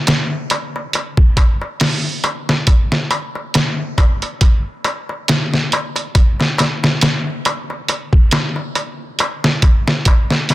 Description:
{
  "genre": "trip hop",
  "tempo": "69 BPM",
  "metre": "4/4",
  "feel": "swing 55% on 16ths",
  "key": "none",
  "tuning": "none",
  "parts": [
    { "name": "trip hop sampler-style drum kit", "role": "drums", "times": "0.1-10.5 s", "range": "hi-hat, kick drum, snare drum", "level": "-14 LUFS", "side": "equal", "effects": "none" },
    { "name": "darbuka", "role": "percussion", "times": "0.1-10.5 s", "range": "none", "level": "-23 LUFS", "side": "left 2 dB", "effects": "none" }
  ],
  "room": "light reverb",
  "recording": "dense, heavily limited modern master",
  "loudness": "-14 LUFS",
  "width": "side -16 dB against mid",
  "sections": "0.0-10.5 A section",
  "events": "none",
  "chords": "none"
}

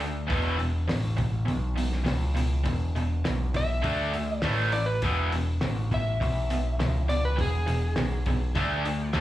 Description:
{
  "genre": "garage rock duo or trio",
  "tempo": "102 BPM",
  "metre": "4/4",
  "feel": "straight",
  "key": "E major",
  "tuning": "A4 = 440 Hz",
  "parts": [
    { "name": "cranked stack guitar", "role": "riff", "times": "0.0-9.2 s", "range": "E2 to D4", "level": "-30 LUFS", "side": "equal", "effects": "overdrive, slapback echo" },
    { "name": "overdriven picked electric bass", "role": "bass", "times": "0.0-9.2 s", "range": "E1 to D2", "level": "-28 LUFS", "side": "equal", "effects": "none" },
    { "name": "cloth-damped thuddy drum kit", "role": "drums", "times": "0.0-9.2 s", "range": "hi-hat, kick drum, snare drum", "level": "-33 LUFS", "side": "equal", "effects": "none" },
    { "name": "electric slide guitar", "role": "melody", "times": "3.6-9.1 s", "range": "G#4 to E5", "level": "-32 LUFS", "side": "equal", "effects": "slapback echo" }
  ],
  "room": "studio ambience",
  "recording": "live gig heard through the venue's PA, club reverb",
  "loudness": "-24 LUFS",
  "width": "side -14 dB against mid",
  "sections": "0.0-9.2 A section",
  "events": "none",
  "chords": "0.3 E5; 3.8 D5; 4.4 A5; 5.0 E; 8.6 D5"
}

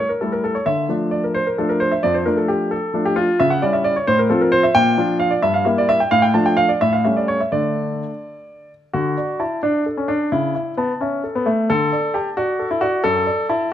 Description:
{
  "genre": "classical-period piano sonatina",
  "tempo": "88 BPM (dotted quarters)",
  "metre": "6/8",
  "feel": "straight",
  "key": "D minor, D major from 8.9 s",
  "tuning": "A4 = 444 Hz",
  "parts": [
    { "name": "clear baby grand piano", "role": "solo", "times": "0.0-13.7 s", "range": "F2 to A5", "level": "-16 LUFS", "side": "equal", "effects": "none" }
  ],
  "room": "moderate recital hall reverb, RT60 1.6 s",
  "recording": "close, detailed microphones",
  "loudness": "-16 LUFS",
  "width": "side -10 dB against mid",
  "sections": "0.0-8.9 A section; 8.9-13.7 A section",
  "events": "none",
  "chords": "0.0 A7; 0.7 Dm; 2.0 Dm/F; 3.4 C#dim; 4.1 F/A; 4.8 Bb; 5.4 Edim/G; 6.1 Dm/A; 6.8 A7; 7.5 D5; 10.3 A/C#; 11.7 D5; 13.0 D/F#"
}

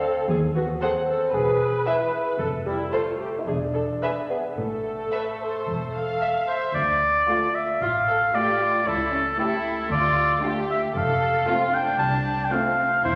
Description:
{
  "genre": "cinematic, playful, whimsical film cue",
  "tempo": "114 BPM",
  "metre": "4/4",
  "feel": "straight",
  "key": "A minor, D minor from 6.8 s",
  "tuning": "A4 = 441 Hz",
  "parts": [
    { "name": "mellow bassoon", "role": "accompaniment", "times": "0.0-6.2 s", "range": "G3 to G#4", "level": "-29 LUFS", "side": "equal", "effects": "none" },
    { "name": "muted studio viola section", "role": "accompaniment", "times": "0.0-12.9 s", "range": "A3 to B4", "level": "-33 LUFS", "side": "equal", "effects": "none" },
    { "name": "muted studio cello section", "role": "bass", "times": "0.3-13.2 s", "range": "C2 to A2", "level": "-36 LUFS", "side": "equal", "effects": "none" },
    { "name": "muted studio double bass section", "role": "bass", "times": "0.3-13.2 s", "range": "E1 to D#2", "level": "-35 LUFS", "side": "equal", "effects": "none" },
    { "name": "muted studio violin section", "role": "melody", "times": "0.8-12.9 s", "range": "F4 to F#5", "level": "-37 LUFS", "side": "equal", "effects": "none" },
    { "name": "muted studio violin section", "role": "second line", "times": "0.8-13.1 s", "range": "C4 to F5", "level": "-32 LUFS", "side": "equal", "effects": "none" },
    { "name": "warm oboe", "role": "second line", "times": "6.5-13.2 s", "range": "A4 to A5", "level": "-24 LUFS", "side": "equal", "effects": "none" },
    { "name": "mellow French horn section", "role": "sustained chords", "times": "7.3-12.7 s", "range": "A3 to G4", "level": "-37 LUFS", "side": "equal", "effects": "none" }
  ],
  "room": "wet concert hall reverb, RT60 2.2 s",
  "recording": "none",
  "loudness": "-24 LUFS",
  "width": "mono",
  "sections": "0.0-6.8 A section; 6.8-13.2 B section",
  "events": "none",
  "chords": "0.3 D#dim7(no3); 1.3 E; 2.4 F; 3.5 E7(no3); 4.6 Am; 6.8 Dm; 8.9 A7/C#; 9.9 Dm; 11.0 F"
}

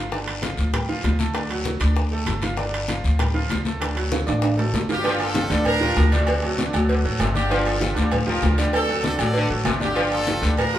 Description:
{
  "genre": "latin, salsa",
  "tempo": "195 BPM",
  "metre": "4/4",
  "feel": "straight",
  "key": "G minor",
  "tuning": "A4 = 443 Hz",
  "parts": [
    { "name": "clear baby grand piano", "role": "accompaniment", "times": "0.0-10.8 s", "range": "D3 to D6", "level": "-27 LUFS", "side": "right 2 dB", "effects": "none" },
    { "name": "upright bass", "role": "bass", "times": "0.0-10.8 s", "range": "G1 to D2", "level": "-23 LUFS", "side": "equal", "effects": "none" },
    { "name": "bongos and cowbell", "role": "percussion", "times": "0.1-10.7 s", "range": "none", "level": "-30 LUFS", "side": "equal", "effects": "none" },
    { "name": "congas", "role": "percussion", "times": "0.1-10.8 s", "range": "none", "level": "-31 LUFS", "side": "left 2 dB", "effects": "none" },
    { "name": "guiro", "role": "percussion", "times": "0.1-10.8 s", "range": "none", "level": "-34 LUFS", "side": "left 4 dB", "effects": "none" },
    { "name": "timbales and agogo bells", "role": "percussion", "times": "0.3-10.7 s", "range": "none", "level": "-30 LUFS", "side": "right 2 dB", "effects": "none" },
    { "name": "brilliant horn section", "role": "melody", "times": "4.9-10.8 s", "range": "A3 to D5", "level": "-26 LUFS", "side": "equal", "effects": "none" },
    { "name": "brilliant trombone section", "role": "second line", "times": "5.0-10.8 s", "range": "C3 to G3", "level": "-29 LUFS", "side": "left 2 dB", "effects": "none" }
  ],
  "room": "wet large studio reverb, RT60 1.4 s",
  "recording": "band playing live in one room",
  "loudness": "-19 LUFS",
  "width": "side -12 dB against mid",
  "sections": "0.0-5.0 A section; 5.0-10.8 B section",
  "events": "drum fill 4.1-5.0",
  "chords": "0.1 Gsus2; 1.4 D; 2.6 Gsus2; 3.8 D; 5.0 Gm9; 6.3 D7; 7.5 Gm9; 8.7 D7; 10.0 Gm9"
}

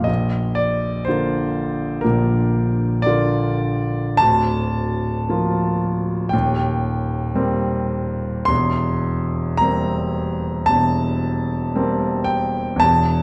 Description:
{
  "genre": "classical, romantic nocturne for solo piano",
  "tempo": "56 BPM",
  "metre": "4/4",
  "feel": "uneven beats, rubato",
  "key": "Bb major",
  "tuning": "A4 = 440 Hz",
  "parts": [
    { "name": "clear concert grand piano", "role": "solo", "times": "0.0-13.2 s", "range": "D1 to C6", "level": "-20 LUFS", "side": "equal", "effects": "none" }
  ],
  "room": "moderate recital hall reverb, RT60 1.6 s",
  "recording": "dark, warm production",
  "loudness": "-20 LUFS",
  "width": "mono",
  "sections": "0.0-13.2 A section",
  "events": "none",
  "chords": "0.1 Bb; 4.2 Bb/D; 6.3 Cm7/Eb; 8.5 C7/E"
}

